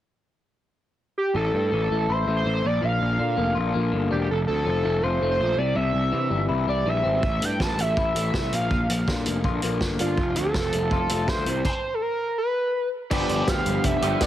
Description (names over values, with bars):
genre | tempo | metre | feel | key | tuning
indie rock | 163 BPM | 4/4 | straight | unclear | A4 = 440 Hz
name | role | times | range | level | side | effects
overdriven synth lead | melody | 1.2-14.3 s | F4 to A5 | -26 LUFS | right 1 dB | chorus, digital delay
fuzz picked electric bass | bass | 1.3-14.3 s | E1 to C3 | -26 LUFS | equal | overdrive
electric guitar through a small old amp | riff | 1.4-14.3 s | F2 to G4 | -28 LUFS | left 5 dB | none
vintage drum kit | drums | 7.2-14.3 s | crash cymbal, hi-hat, kick drum, snare drum | -27 LUFS | equal | none
overdriven combo organ | sustained chords | 13.1-14.3 s | F4 to B5 | -39 LUFS | left 1 dB | none
overdriven electric guitar | riff | 13.1-14.3 s | G2 to G4 | -29 LUFS | right 10 dB | ensemble chorus, digital delay
room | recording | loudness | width
light reverb, small room ambience | heavily compressed radio sound | -21 LUFS | side -12 dB against mid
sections
0.0-1.4 A section; 1.4-13.1 B section; 13.1-14.3 C section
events
stop 11.6-13.1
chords
0.0 N.C.; 1.4 A5; 2.6 Bb; 4.3 F; 5.6 C; 7.2 Am; 8.5 Bb; 10.2 F; 11.5 Bbsus2/C; 12.4 N.C.; 13.1 G7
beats
0.25 0.61 0.98 | 1.35 1.72 2.09 2.46 | 2.82 3.19 3.56 3.93 | 4.29 4.66 5.03 5.40 | 5.77 6.13 6.50 6.87 | 7.24 7.61 7.97 8.34 | 8.71 9.08 9.44 9.81 | 10.18 10.54 10.91 11.28 | 11.65 12.01 12.38 12.74 | 13.11 13.48 13.84 14.21